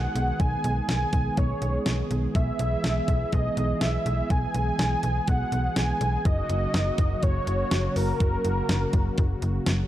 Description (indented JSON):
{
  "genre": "synth-pop",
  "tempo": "123 BPM",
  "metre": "4/4",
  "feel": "straight",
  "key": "unclear",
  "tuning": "A4 = 441 Hz",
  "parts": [
    { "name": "wide unison lead", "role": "melody", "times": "0.0-9.7 s", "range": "A#4 to G#5", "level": "-29 LUFS", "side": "right 1 dB", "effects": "analog delay" },
    { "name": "brassy analog pad", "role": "sustained chords", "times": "0.0-9.9 s", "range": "C#3 to G#4", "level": "-31 LUFS", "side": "right 1 dB", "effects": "chorus" },
    { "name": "slap-like FM bass", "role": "bass", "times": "0.0-9.8 s", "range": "F#1 to B1", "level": "-27 LUFS", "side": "equal", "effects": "none" },
    { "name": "clean 12-bit digital drum machine", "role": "drums", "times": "0.2-9.8 s", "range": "hi-hat, kick drum, snare drum", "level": "-26 LUFS", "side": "equal", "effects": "overdrive" }
  ],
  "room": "light reverb",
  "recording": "dark, warm production",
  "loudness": "-23 LUFS",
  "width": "side -13 dB against mid",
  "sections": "0.0-9.9 A section",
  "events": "none",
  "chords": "0.0 G#m/B; 2.4 E/B; 6.3 F#"
}